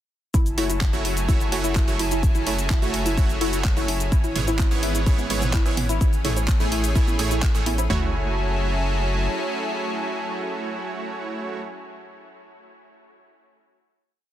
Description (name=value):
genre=progressive house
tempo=127 BPM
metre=4/4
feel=straight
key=F# minor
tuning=A4 = 440 Hz
part: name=lush unison pad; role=sustained chords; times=0.3-11.6 s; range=E3 to A4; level=-30 LUFS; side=left 1 dB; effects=chorus, sidechain pumping
part: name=soft round pluck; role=arpeggios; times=0.3-8.1 s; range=E4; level=-30 LUFS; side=left 1 dB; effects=wide subtle chorus, sidechain pumping, tape echo
part: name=round analog bass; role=bass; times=0.3-9.3 s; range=F#1 to A1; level=-27 LUFS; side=equal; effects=sidechain pumping
part: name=pop drum kit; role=drums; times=0.3-8.0 s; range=kick drum, snare drum, toms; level=-21 LUFS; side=equal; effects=none
part: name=pop drum kit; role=drums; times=0.3-7.9 s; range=cabasa, handclaps, hi-hat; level=-30 LUFS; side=equal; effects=none
part: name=supersaw stab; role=stabs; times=0.6-11.6 s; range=G#2 to C#5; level=-29 LUFS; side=right 4 dB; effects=sidechain pumping, tape echo
part: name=electronic toms, bongos and congas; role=percussion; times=4.4-7.9 s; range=none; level=-32 LUFS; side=right 4 dB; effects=sidechain pumping on toms, sidechain pumping on perc
room=little or no reverb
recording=dense, heavily limited modern master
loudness=-20 LUFS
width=side -12 dB against mid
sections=0.3-7.9 drop; 7.9-11.7 final chord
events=drop 0.3-7.9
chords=0.3 F#m7; 4.1 C#m7/G#; 6.0 Amaj7; 7.9 F#m7